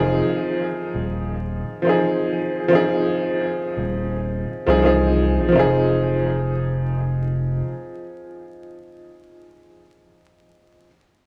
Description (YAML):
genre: trip hop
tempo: 85 BPM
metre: 4/4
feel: swing 56% on 16ths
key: F minor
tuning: A4 = 440 Hz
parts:
  - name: clear upright piano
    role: accompaniment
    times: 0.0-10.9 s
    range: F3 to Ab4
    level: -22 LUFS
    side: equal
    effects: tremolo, tape echo
  - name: round analog bass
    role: bass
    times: 0.0-7.6 s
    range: Eb1 to C2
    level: -24 LUFS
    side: equal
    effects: tube saturation
room: wet plate reverb, RT60 3.2 s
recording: dreamy mix soaked in reverb, vinyl crackle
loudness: -21 LUFS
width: mono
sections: 0.0-5.5 A section; 5.5-8.4 B section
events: none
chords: 0.0 Fm7